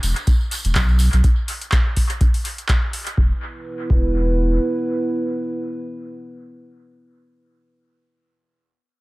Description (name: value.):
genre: acid house.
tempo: 124 BPM.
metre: 4/4.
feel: swing 55% on 16ths.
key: unclear.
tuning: A4 = 441 Hz.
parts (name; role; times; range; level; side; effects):
dark analog pad; sustained chords; 0.0-7.6 s; B3 to B4; -23 LUFS; right 2 dB; chorus, sidechain pumping.
saturated sub bass; bass; 0.0-4.6 s; E1 to B1; -18 LUFS; equal; sidechain pumping.
electro analog drum machine; drums; 0.0-3.2 s; handclaps, hi-hat; -27 LUFS; equal; dub echo.
tambourine; percussion; 0.0-1.2 s; none; -32 LUFS; right 2 dB; dub echo.
electronic kick drum; drums; 0.3-4.1 s; none; -17 LUFS; equal; none.
room: light reverb, small room ambience.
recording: echo-heavy mix.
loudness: -17 LUFS.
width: side -22 dB against mid.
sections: 0.0-3.2 A section; 3.2-7.0 B section.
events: none.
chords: 0.0 N.C.; 3.2 E5.